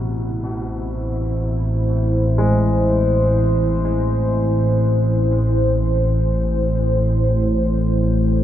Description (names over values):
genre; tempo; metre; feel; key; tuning
dark ambient drone; free time; none; none; A harmonic minor; A4 = 439 Hz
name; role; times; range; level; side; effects
deep dark ambient pad; sustained chords; 0.0-8.4 s; E4 to C5; -22 LUFS; equal; chorus, built-in reverb
warm grand piano; arpeggios; 0.0-8.4 s; B2 to G#3; -29 LUFS; left 3 dB; tape echo
analog drone; drone; 0.0-8.4 s; A1 to A2; -18 LUFS; equal; chorus
room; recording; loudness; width
wet cathedral reverb, RT60 6.5 s; none; -16 LUFS; side -11 dB against mid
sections
0.0-8.4 A section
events
none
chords
0.0 Am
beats
free time